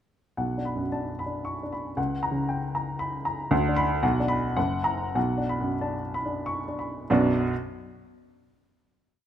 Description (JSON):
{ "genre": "classical, romantic character piece for solo piano", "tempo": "90-120 BPM", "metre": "3/4", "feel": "rubato", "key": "B minor", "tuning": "A4 = 440 Hz", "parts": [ { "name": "warm upright piano", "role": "solo", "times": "0.4-7.5 s", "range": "F#1 to C#6", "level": "-25 LUFS", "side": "equal", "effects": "none" } ], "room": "moderate recital hall reverb, RT60 1.7 s", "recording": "close, detailed microphones", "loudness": "-25 LUFS", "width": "side -10 dB against mid", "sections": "0.4-7.1 A section; 7.1-8.9 final chord", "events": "slowing down 2.7-7.1", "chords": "0.4 Bm; 2.0 F#/C#; 3.5 Bm/D; 4.0 Bm; 4.6 F#; 5.2 Bm" }